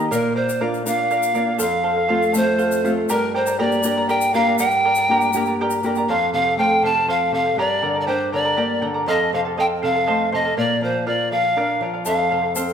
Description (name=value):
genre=andean folk, Andean ensemble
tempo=80 BPM (dotted quarters)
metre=6/8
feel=straight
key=unclear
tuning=A4 = 440 Hz
part: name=charango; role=accompaniment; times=0.0-12.7 s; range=G4 to Bb5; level=-24 LUFS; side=right 2 dB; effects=none
part: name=nylon-string guitar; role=accompaniment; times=0.0-12.7 s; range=F2 to G4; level=-24 LUFS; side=left 1 dB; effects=none
part: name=breathy bright pan flute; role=melody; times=0.1-12.5 s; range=Bb4 to A5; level=-20 LUFS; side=equal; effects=none
part: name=egg shaker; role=percussion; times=0.1-6.0, 12.1-12.7 s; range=none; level=-32 LUFS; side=left 7 dB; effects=none
room=wet recital hall reverb, RT60 1.4 s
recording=faint mains hum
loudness=-17 LUFS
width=side -8 dB against mid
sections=0.0-6.1 A section; 6.1-12.7 B section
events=none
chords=0.1 Bb; 1.6 F; 3.1 Gm; 6.1 F; 7.6 Gm; 9.1 F7; 10.6 Bb; 12.1 F